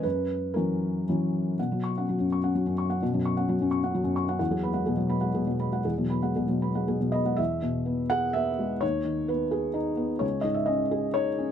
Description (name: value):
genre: neoclassical minimalist piano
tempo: 115-132 BPM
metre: 3/4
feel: rubato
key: B major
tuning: A4 = 438 Hz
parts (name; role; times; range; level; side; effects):
- felt-muted upright piano; solo; 0.0-11.5 s; C#2 to C#6; -25 LUFS; left 1 dB; none
room: little or no reverb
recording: close, detailed microphones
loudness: -25 LUFS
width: side -9 dB against mid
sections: 0.0-1.6 A section; 1.6-7.4 B section; 7.4-11.5 C section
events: none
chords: 0.0 F#7; 1.6 Bsus2; 4.4 Eadd9; 7.4 E; 8.8 G#m/D#; 10.2 C#sus2